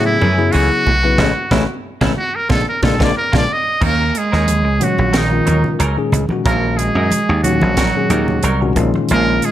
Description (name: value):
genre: electric jazz fusion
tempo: 91 BPM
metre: 4/4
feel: straight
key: Eb minor from 3.8 s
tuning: A4 = 440 Hz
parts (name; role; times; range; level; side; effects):
- trumpet with metal mute; melody; 0.0-9.5 s; Eb4 to D#5; -19 LUFS; right 1 dB; none
- bell-like tine electric piano; accompaniment; 0.0-9.5 s; Bb2 to B4; -20 LUFS; left 4 dB; none
- dry thumbed slap bass; bass; 0.0-9.4 s; A1 to A2; -17 LUFS; equal; none
- semi-hollow electric guitar; stabs; 0.1-9.5 s; E3 to C5; -26 LUFS; right 2 dB; analog chorus
- congas; percussion; 0.2-9.1 s; none; -24 LUFS; right 2 dB; none
- crisp fusion drum kit; drums; 0.5-9.5 s; crash cymbal, hi-hat, kick drum, snare drum; -22 LUFS; right 1 dB; none
- mellow bass clarinet; second line; 3.8-9.5 s; Eb3 to Bb3; -21 LUFS; right 5 dB; none
room: light reverb, studio ambience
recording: none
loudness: -13 LUFS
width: side -12 dB against mid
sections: 0.0-3.8 A section; 3.8-9.5 B section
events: muted trumpet solo 0.0-3.8; band accent 1.2-3.8; drum fill 2.5-3.8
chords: 0.0 F#m9; 1.2 Amaj7; 2.5 A#7; 3.8 Ebm7; 8.8 Bbm9